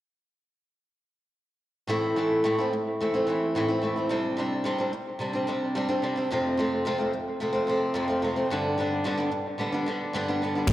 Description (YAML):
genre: quiet-loud alternative rock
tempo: 109 BPM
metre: 4/4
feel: straight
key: A minor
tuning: A4 = 439 Hz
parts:
  - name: picked old ladder-braced acoustic guitar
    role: arpeggios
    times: 1.9-10.7 s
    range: F2 to E4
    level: -25 LUFS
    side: equal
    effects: analog delay, slapback echo
  - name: fuzz picked electric bass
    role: bass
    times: 10.7 s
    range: A1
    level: -21 LUFS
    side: equal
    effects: overdrive
  - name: huge arena drum kit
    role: drums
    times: 10.7 s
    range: crash cymbal, kick drum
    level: -24 LUFS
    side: equal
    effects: none
room: light reverb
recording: live gig heard through the venue's PA, recital hall reverb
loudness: -25 LUFS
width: side -14 dB against mid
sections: 1.9-10.7 A section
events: none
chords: 1.9 Am; 4.1 Csus2; 6.3 F; 8.5 G